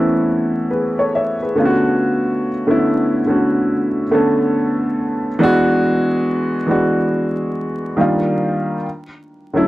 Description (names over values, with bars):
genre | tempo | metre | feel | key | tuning
R&B | 70 BPM | 4/4 | swing 63% on 16ths | B dorian | A4 = 440 Hz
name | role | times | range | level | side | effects
warm baby grand piano | solo | 0.0-9.7 s | D3 to E5 | -15 LUFS | equal | none
room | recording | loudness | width
light reverb | dry, close 1970s-style studio recording, vinyl crackle | -15 LUFS | side -16 dB against mid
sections
0.0-9.7 A section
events
none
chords
0.0 A69; 1.6 Bm9; 5.4 E9; 8.0 D#maj9; 8.8 Dmaj9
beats
0.27 1.13 | 1.99 2.84 3.70 4.56 | 5.41 6.27 7.13 7.99 | 8.84